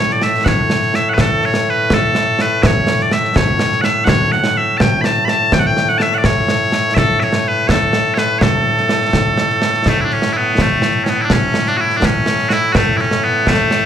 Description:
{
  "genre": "scottish traditional, Scottish pipe music",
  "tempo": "83 BPM (dotted quarters)",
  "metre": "6/8",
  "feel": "straight",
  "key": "A major",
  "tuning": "A4 = 442 Hz",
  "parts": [
    { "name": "loud bright bagpipes", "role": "melody", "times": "0.0-13.9 s", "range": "A2 to B5", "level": "-14 LUFS", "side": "equal", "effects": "slapback echo" },
    { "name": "concert snare drum and concert bass drum", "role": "drums", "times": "0.1-13.8 s", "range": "none", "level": "-16 LUFS", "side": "equal", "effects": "none" }
  ],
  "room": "light reverb",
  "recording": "live gig heard through the venue's PA, club reverb",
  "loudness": "-12 LUFS",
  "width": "side -9 dB against mid",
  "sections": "0.0-9.9 A section; 9.9-13.9 A section",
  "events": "none",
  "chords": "none"
}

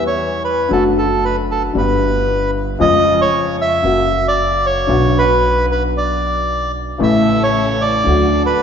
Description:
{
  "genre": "tango",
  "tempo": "114 BPM",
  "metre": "4/4",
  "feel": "rubato",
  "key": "B minor",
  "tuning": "A4 = 438 Hz",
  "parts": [
    { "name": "bandoneon", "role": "melody", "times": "0.0-8.6 s", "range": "A4 to E5", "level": "-16 LUFS", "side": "right 1 dB", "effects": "none" },
    { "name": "clear upright piano", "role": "accompaniment", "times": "0.0-8.6 s", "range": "G1 to G4", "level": "-18 LUFS", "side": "left 3 dB", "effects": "none" },
    { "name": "upright bass", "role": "bass", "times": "0.0-8.6 s", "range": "F#1 to E#2", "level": "-21 LUFS", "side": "right 2 dB", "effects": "none" },
    { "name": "dark chamber string section", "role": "stabs", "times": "7.0-8.6 s", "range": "C#4 to A4", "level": "-26 LUFS", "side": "right 2 dB", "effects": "none" }
  ],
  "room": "wet concert hall reverb, RT60 1.9 s",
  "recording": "recorded in a church or concert hall, nothing above 7.6 kHz",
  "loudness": "-13 LUFS",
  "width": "side -7 dB against mid",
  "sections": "0.0-8.6 A section",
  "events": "none",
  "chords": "0.0 Em; 0.7 D/F#; 1.8 G; 2.8 C#/E#; 3.8 F#; 4.9 Bm; 7.0 A; 8.1 D"
}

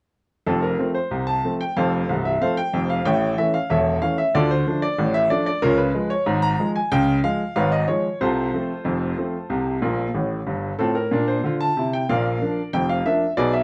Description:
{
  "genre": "ragtime piano",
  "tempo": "93 BPM",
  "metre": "2/4",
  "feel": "straight",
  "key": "F major",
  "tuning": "A4 = 440 Hz",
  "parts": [
    { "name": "clear upright piano", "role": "solo", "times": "0.5-13.6 s", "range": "C1 to Bb5", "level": "-22 LUFS", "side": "equal", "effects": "none" }
  ],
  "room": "moderate club reverb, RT60 0.6 s",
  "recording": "dark, warm production",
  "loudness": "-22 LUFS",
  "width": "mono",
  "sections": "0.5-13.6 A section",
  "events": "upright piano fill 9.8-10.8",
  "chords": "0.5 F; 3.0 A; 4.3 Dm; 5.6 Db7; 8.2 F/C; 9.5 C5; 10.8 F/A; 12.1 Bb"
}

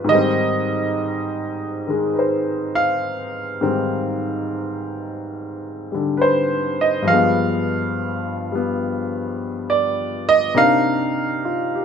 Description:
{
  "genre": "solo jazz",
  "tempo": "69 BPM",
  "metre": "4/4",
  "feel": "swing 68% on 8ths, rubato",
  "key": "unclear",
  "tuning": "A4 = 439 Hz",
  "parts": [
    { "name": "warm grand piano", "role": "solo", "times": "0.0-11.8 s", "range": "G2 to F5", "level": "-18 LUFS", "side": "equal", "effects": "none" }
  ],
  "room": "light reverb",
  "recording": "minimal, uncompressed stereo recording",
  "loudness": "-18 LUFS",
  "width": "side -7 dB against mid",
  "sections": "0.0-11.8 A section",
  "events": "grand piano solo 0.0-11.8",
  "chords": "0.1 Abmaj7; 7.1 G7b9; 10.6 Cm9"
}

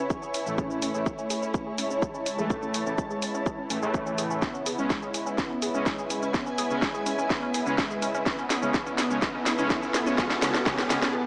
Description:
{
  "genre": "melodic techno",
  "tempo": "125 BPM",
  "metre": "4/4",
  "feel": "straight",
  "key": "unclear",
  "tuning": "A4 = 440 Hz",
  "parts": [
    { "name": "dark studio string section", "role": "sustained chords", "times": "0.0-11.1 s", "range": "C#3 to E4", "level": "-39 LUFS", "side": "equal", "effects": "sidechain pumping" },
    { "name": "analog pluck", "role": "arpeggios", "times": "0.0-11.1 s", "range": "C#4 to G#4", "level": "-37 LUFS", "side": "equal", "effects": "chorus, sidechain pumping, tape echo" },
    { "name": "granular cloud pad", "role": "texture", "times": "0.0-11.1 s", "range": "E4 to A5", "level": "-36 LUFS", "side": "equal", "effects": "built-in reverb, sidechain pumping" },
    { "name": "electronic kick drum", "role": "drums", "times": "0.1-10.8 s", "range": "none", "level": "-32 LUFS", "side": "equal", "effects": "none" },
    { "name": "house drum kit", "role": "drums", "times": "0.1-11.1 s", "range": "hi-hat, shaker, snare drum", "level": "-32 LUFS", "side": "equal", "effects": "none" },
    { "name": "analog synth brass", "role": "stabs", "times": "0.5-11.0 s", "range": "A2 to C#4", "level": "-35 LUFS", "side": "equal", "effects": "chorus, sidechain pumping, tape echo" },
    { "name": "unison lead", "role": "melody", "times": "0.6-11.3 s", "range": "G#3 to C#4", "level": "-36 LUFS", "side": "equal", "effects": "sidechain pumping, analog delay" },
    { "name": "riser", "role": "sound effects", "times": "7.3-11.1 s", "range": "none", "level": "-39 LUFS", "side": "equal", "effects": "none" }
  ],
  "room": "moderate scoring stage reverb, RT60 1.9 s",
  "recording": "dry, gritty hardware recording, small speaker sound",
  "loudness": "-28 LUFS",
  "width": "mono",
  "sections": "0.0-11.3 A section",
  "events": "build-up 0.0-11.3; filter sweep on synth arpeggio sound 0.0-11.3; drum fill 4.4-11.1",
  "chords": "0.0 A; 4.4 C#m7; 8.3 A"
}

